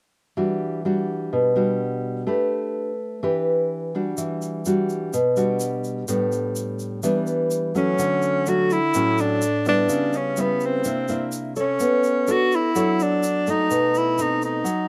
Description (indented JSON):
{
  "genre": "bossa nova",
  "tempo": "126 BPM",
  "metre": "4/4",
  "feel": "straight",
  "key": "unclear",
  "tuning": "A4 = 439 Hz",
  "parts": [
    { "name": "nylon-string guitar", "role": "accompaniment", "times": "0.4-14.9 s", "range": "A2 to C#5", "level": "-24 LUFS", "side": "equal", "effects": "none" },
    { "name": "tube shaker", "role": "percussion", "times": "4.2-14.9 s", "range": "none", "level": "-38 LUFS", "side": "equal", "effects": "none" },
    { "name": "mellow tenor saxophone", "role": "melody", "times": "7.8-14.9 s", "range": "B3 to F#4", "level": "-24 LUFS", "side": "equal", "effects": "slapback echo" }
  ],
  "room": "light reverb",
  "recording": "recorded outdoors, with no room sound",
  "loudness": "-22 LUFS",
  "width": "mono",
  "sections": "0.4-8.0 A section; 8.0-14.9 B section",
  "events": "none",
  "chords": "0.4 Em9; 2.3 A9sus4; 4.2 Em9; 6.1 A9sus4; 9.9 C#m7b5; 10.8 C9; 11.8 Bm9; 13.7 B7b9",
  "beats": "| 0.36 0.84 1.32 1.79 | 2.27 2.75 3.23 3.70 | 4.18 4.66 5.13 5.61 | 6.08 6.56 7.04 7.51 | 7.99 8.47 8.94 9.42 | 9.90 10.37 10.85 11.32 | 11.80 12.28 12.75 13.23 | 13.70 14.18 14.66"
}